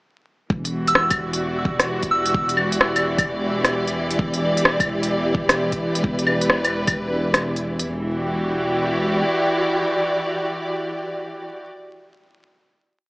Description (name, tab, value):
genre	future garage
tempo	130 BPM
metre	4/4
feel	swing 64% on 16ths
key	E minor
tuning	A4 = 442 Hz
part	warm studio string section	sustained chords	0.5-11.7 s	E3 to D5	-22 LUFS	equal	vintage 12-bit sampler grit, sidechain pumping
part	dark detuned saw bass	bass	0.5-9.2 s	E1	-26 LUFS	equal	sidechain pumping
part	electronic kick drum	drums	0.5-6.9 s	none	-24 LUFS	equal	small room ambience
part	deep house drum kit	drums	0.7-7.9 s	claves, hi-hat, rim click	-20 LUFS	equal	small room ambience
part	soft synth bell	melody	0.9-2.5 s	E6	-24 LUFS	right 1 dB	chorus, tremolo, tape echo
room	moderate lush hall reverb, RT60 1.8 s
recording	vinyl crackle, small speaker sound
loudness	-19 LUFS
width	side -24 dB against mid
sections	0.5-7.9 groove; 7.9-11.6 final chord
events	none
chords	0.5 Em7; 4.2 G/E; 7.9 Em7